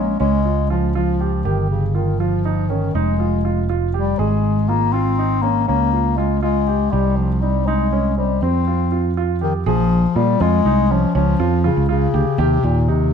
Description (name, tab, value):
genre	progressive instrumental, band music in an uneven meter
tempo	241 BPM (eighths)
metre	11/8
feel	straight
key	Bb dorian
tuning	A4 = 441 Hz
part	warm bass clarinet	melody	0.0-13.1 s	Bb2 to C4	-19 LUFS	left 7 dB	none
part	warm concert grand piano	arpeggios	0.0-13.1 s	C4 to Ab4	-24 LUFS	right 12 dB	none
part	fretless electric bass	bass	0.0-13.1 s	F1 to Bb2	-19 LUFS	right 2 dB	none
room	moderate echo chamber reverb, RT60 1.5 s, small room reverb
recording	1960s-style stereo with parts hard left and right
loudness	-16 LUFS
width	side -7 dB against mid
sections	0.0-9.7 A section; 9.7-13.1 B section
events	none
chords	0.2 Db; 1.5 Eb9/G; 2.9 Fm9; 4.2 Ab; 5.7 Db6; 6.9 Cm; 8.4 Fsus2; 9.7 Bbm7; 11.1 Db; 12.4 Eb